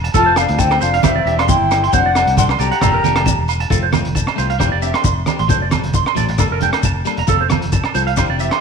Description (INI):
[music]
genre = highlife guitar band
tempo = 135 BPM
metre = 4/4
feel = swing 55% on 16ths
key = F major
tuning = A4 = 440 Hz
[part]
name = clean electric guitar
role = arpeggios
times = 0.0-8.6 s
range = A4 to C6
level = -20 LUFS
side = right 11 dB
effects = spring reverb, slapback echo
[part]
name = fingered electric bass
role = bass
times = 0.0-8.5 s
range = E1 to D2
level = -20 LUFS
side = equal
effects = none
[part]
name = crunchy breakbeat drum kit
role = drums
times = 0.0-8.6 s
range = hi-hat, kick drum, rim click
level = -22 LUFS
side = equal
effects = none
[part]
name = clean electric guitar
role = accompaniment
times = 0.1-8.6 s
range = E3 to A4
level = -25 LUFS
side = left 13 dB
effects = none
[part]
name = congas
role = percussion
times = 0.1-8.2 s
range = none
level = -23 LUFS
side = right 10 dB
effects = none
[part]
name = shekere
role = percussion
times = 0.1-8.5 s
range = none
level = -23 LUFS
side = left 7 dB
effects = none
[part]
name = mellow silver concert flute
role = melody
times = 0.2-3.5 s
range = E5 to Bb5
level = -17 LUFS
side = left 1 dB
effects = slapback echo
[part]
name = bright alto saxophone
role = second line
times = 0.2-3.5 s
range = C4 to G4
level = -24 LUFS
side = left 11 dB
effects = none
[part]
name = agogo bells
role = percussion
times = 0.4-8.6 s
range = none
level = -25 LUFS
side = right 13 dB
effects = none
[sound]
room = light reverb, studio reverb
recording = 1960s-style stereo with parts hard left and right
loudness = -13 LUFS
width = side -6 dB against mid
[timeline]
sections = 0.0-3.7 A section; 3.7-8.6 B section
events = none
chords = 0.1 F; 1.0 Cadd9; 1.9 D7/F; 2.8 Gmadd9/F; 3.7 F; 4.6 Cadd9/F; 5.5 D7/F; 6.4 Gmadd9/F; 7.3 F